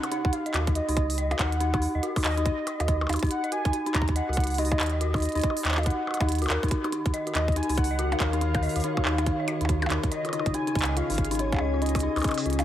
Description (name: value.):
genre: IDM.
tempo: 141 BPM.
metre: 4/4.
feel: swing 62% on 16ths.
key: unclear.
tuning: A4 = 439 Hz.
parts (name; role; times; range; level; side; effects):
warbly nostalgic lead; melody; 0.0-12.6 s; Db5 to Bb5; -32 LUFS; equal; tremolo, wide subtle chorus, digital delay.
dark detuned synth bell; arpeggios; 0.0-12.6 s; Eb4 to Eb5; -30 LUFS; left 2 dB; chorus, vintage 12-bit sampler grit, tape echo.
glitchy drum kit; drums; 0.0-12.6 s; handclaps, hi-hat, percussion blips; -32 LUFS; equal; none.
warm sub bass; bass; 0.2-12.6 s; Ab1 to Eb2; -28 LUFS; equal; none.
electronic kick drum; drums; 0.2-12.3 s; none; -27 LUFS; equal; none.
glassy FM pad; sustained chords; 6.7-12.6 s; Db3 to Ab5; -33 LUFS; left 2 dB; ensemble chorus, built-in reverb, vintage 12-bit sampler grit.
room: light reverb.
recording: none.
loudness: -24 LUFS.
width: side -11 dB against mid.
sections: 0.0-12.6 A section.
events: none.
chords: 0.0 Gbmaj13/Db; 10.1 Dbsus2.